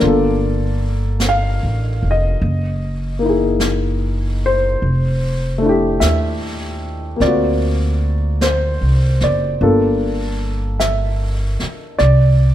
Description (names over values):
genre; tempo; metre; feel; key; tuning
jazz ballad; 50 BPM; 4/4; swing 69% on 8ths; unclear; A4 = 440 Hz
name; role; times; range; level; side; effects
warm upright piano; accompaniment; 0.0-12.5 s; D3 to F5; -18 LUFS; left 2 dB; none
upright bass; bass; 0.0-12.5 s; F1 to Eb2; -17 LUFS; equal; none
jazz brush drum kit; drums; 0.0-12.5 s; brushed snare drum, hi-hat, snare drum; -27 LUFS; right 1 dB; none
room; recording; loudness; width
light reverb; none; -15 LUFS; side -12 dB against mid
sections
0.0-12.5 A section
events
none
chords
0.0 Gm9; 2.4 Gb13; 4.8 Fmaj13; 7.2 D7alt; 9.6 Gm7; 12.0 Csus2